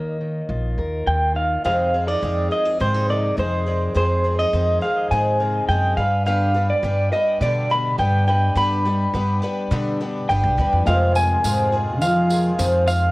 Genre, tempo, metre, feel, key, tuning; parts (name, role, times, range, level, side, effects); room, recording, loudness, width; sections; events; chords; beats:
indie folk with a building arrangement; 104 BPM; 4/4; straight; A4 = 442 Hz
electric guitar through a small old amp; melody; 0.0-13.1 s; C5 to B5; -21 LUFS; equal; tremolo, cassette tape, tape echo
fingerpicked steel-string acoustic guitar; accompaniment; 0.0-10.8 s; Eb2 to B4; -28 LUFS; left 1 dB; cassette tape
upright bass; bass; 0.0-13.1 s; G1 to F3; -21 LUFS; equal
picked twelve-string acoustic guitar; accompaniment; 1.6-13.1 s; F2 to Ab4; -27 LUFS; left 1 dB; cassette tape
felt-muted upright piano; accompaniment; 10.9-13.1 s; F1 to Eb5; -28 LUFS; right 1 dB; cassette tape
accordion; sustained chords; 10.9-13.1 s; Eb3 to F4; -34 LUFS; equal; light tremolo tuning, cassette tape
tambourine; percussion; 10.9-13.0 s; -33 LUFS; right 3 dB
light reverb; home recording on cassette; -18 LUFS; side -20 dB against mid
0.0-1.6 A section; 1.6-10.9 B section; 10.9-13.1 C section
0.0 Ebsus2; 1.6 Fm7; 6.0 G; 10.9 Fm7
0.49 1.07 | 1.65 2.23 2.80 3.38 | 3.96 4.53 5.11 5.69 | 6.26 6.84 7.42 7.99 | 8.57 9.14 9.72 10.29 | 10.87 11.44 12.02 12.59